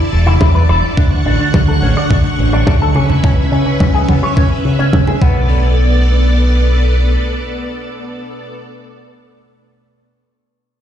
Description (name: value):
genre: nu-disco, nu disco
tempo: 106 BPM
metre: 4/4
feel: straight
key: B minor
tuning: A4 = 440 Hz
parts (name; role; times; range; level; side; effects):
- string machine, full ensemble; sustained chords; 0.0-8.5 s; D3 to C#6; -18 LUFS; equal; ensemble chorus, sidechain pumping
- fingered electric bass with an envelope filter; bass; 0.1-7.2 s; E1 to C#3; -13 LUFS; equal; tube saturation
- damped 70s drum kit; drums; 0.1-5.3 s; crash cymbal, hi-hat, rim click, snare drum; -22 LUFS; left 1 dB; low-pass filter on hats, low-pass filter on cymbals, low-pass filter on snare, low-pass filter on room
- electric guitar with an envelope filter; riff; 0.3-5.7 s; B3 to D5; -20 LUFS; left 1 dB; wide subtle chorus, low-pass filter, digital delay
- congas; percussion; 0.3-5.2 s; none; -21 LUFS; right 1 dB; none
- electronic kick drum; drums; 0.4-5.3 s; none; -14 LUFS; equal; none
room: light reverb, small room ambience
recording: played on a big sound system in a bare room, large studio reverb, nothing above 10.8 kHz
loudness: -10 LUFS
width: side -10 dB against mid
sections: 0.0-5.5 A section; 5.5-7.8 B section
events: filter sweep on drum 0.0-5.5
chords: 0.0 E7sus4; 1.0 Dmaj7; 3.0 C#m7; 5.2 Bm7